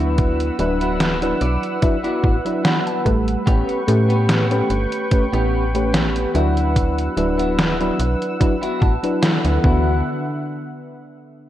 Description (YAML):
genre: vaporwave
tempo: 73 BPM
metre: 4/4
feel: swing 53% on 16ths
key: D major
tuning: A4 = 440 Hz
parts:
  - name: mellow FM electric piano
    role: accompaniment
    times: 0.0-10.0 s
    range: E3 to B4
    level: -22 LUFS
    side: equal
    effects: analog chorus, analog delay
  - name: lush unison pad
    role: sustained chords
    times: 0.0-10.0 s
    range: D3 to E6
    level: -28 LUFS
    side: right 1 dB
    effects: chorus
  - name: clean electric guitar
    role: riff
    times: 0.0-10.0 s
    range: B3 to A5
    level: -25 LUFS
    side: left 1 dB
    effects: wide subtle chorus, analog delay
  - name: slap-like FM bass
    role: bass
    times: 0.0-10.0 s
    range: D1 to A2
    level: -21 LUFS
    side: equal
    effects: tube saturation
  - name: detuned 8-bit digital drum machine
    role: drums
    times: 0.2-9.6 s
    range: hi-hat, snare drum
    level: -22 LUFS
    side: equal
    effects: gated reverb
  - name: electronic kick drum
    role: drums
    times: 0.2-9.8 s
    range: none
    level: -17 LUFS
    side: equal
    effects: none
room: moderate concert hall reverb, RT60 2.0 s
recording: cassette tape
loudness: -16 LUFS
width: side -12 dB against mid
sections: 0.0-10.0 A section; 10.0-11.5 B section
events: clean electric guitar fill 1.0-3.5, 8.4-10.0; band accent 9.2-9.6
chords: 0.0 D69; 3.5 A9; 6.3 D69; 10.0 N.C.